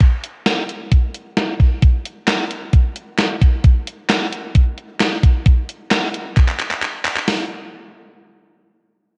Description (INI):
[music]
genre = pop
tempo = 132 BPM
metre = 4/4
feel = straight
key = none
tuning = none
[part]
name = gated 80s digital drum machine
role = drums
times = 0.0-7.4 s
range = handclaps, hi-hat, kick drum, snare drum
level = -17 LUFS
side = equal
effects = gated reverb, gated reverb snare, cassette tape
[sound]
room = light reverb, digital ambience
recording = home recording on cassette, nothing above 10.8 kHz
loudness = -18 LUFS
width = mono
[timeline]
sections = 0.0-7.3 A section; 7.3-9.1 B section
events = drum fill 6.4-7.3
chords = none